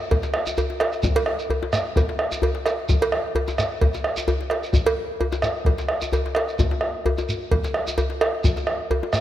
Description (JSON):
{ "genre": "west african traditional, West African drum ensemble", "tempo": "130 BPM", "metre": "4/4", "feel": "straight", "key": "none", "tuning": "none", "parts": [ { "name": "bombo", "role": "percussion", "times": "0.1-9.2 s", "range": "none", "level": "-24 LUFS", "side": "right 1 dB", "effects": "none" }, { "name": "cowbell", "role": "percussion", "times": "0.1-9.0 s", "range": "none", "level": "-27 LUFS", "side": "right 3 dB", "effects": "none" }, { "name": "djembe", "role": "percussion", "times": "0.1-9.2 s", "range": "none", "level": "-26 LUFS", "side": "left 2 dB", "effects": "none" }, { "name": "shekere", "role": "percussion", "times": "0.2-9.2 s", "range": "none", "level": "-30 LUFS", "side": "right 1 dB", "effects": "none" } ], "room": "moderate lush hall reverb, RT60 2.5 s", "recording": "rough home demo mix", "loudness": "-20 LUFS", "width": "side -12 dB against mid", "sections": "0.0-9.2 A section", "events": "none", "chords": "none", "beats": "0.11 0.58 | 1.04 1.50 1.96 2.43 | 2.89 3.35 3.81 4.28 | 4.74 5.20 5.67 6.13 | 6.59 7.05 7.51 7.98 | 8.44 8.90" }